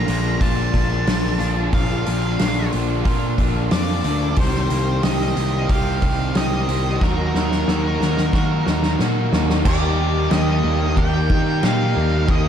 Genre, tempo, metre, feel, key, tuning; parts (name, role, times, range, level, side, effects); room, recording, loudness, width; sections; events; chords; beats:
rock, shoegaze and dream pop; 91 BPM; 4/4; straight; A4 = 440 Hz
octave-fuzz lead guitar; melody; 0.0-12.5 s; Bb4 to Bb5; -28 LUFS; equal; distortion, tape echo
twelve-string electric guitar; arpeggios; 0.0-12.5 s; Eb3 to G4; -31 LUFS; right 8 dB; lush chorus, tape echo
biting overdriven guitar; riff; 0.0-12.5 s; Bb2 to G4; -27 LUFS; right 12 dB; reverse reverb
crunchy overdriven guitar; riff; 0.0-12.5 s; Bb2 to G4; -25 LUFS; left 13 dB; analog chorus
fuzz picked electric bass; bass; 0.0-12.5 s; Bb1 to Eb3; -21 LUFS; equal; overdrive
loose indie drum kit; drums; 0.1-12.4 s; crash cymbal, hi-hat, kick drum, snare drum; -22 LUFS; equal
little or no reverb; dark, warm production; -17 LUFS; side -8 dB against mid
0.0-9.7 A section; 9.7-12.5 B section
drum fill 7.0-9.7
0.0 Bbmaj7; 4.4 Cm7; 7.0 Ebm; 9.7 Ebmaj7
0.41 1.07 | 1.74 2.40 3.06 3.72 | 4.38 5.04 5.70 6.36 | 7.02 7.68 8.34 8.99 | 9.65 10.31 10.97 11.62 | 12.28